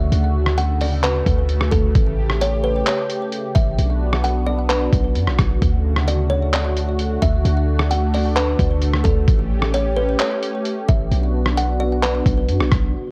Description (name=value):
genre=hip hop, atmospheric cloud-rap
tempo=131 BPM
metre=4/4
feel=half-time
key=D major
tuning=A4 = 441 Hz
part: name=kalimba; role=melody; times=0.0-12.9 s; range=A4 to F#5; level=-27 LUFS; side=equal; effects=low-pass filter, delay
part: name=warm analog pad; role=sustained chords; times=0.0-13.1 s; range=D2 to G4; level=-27 LUFS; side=equal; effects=chorus, sidechain pumping, low-pass filter
part: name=warm 808-style bass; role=bass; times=0.0-12.9 s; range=A1 to F#2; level=-22 LUFS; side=equal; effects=none
part: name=trip hop sampler-style drum kit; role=drums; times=0.1-12.8 s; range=handclaps, hi-hat, kick drum, rim click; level=-23 LUFS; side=equal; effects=none
room=digital ambience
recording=worn, warbling old tape, cassette tape, warbly pitch drift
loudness=-19 LUFS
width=mono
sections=0.0-12.9 A section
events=none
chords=0.0 Dmaj7; 2.0 A7; 3.8 Bm; 5.6 Dmaj7; 9.3 A7; 11.1 Bm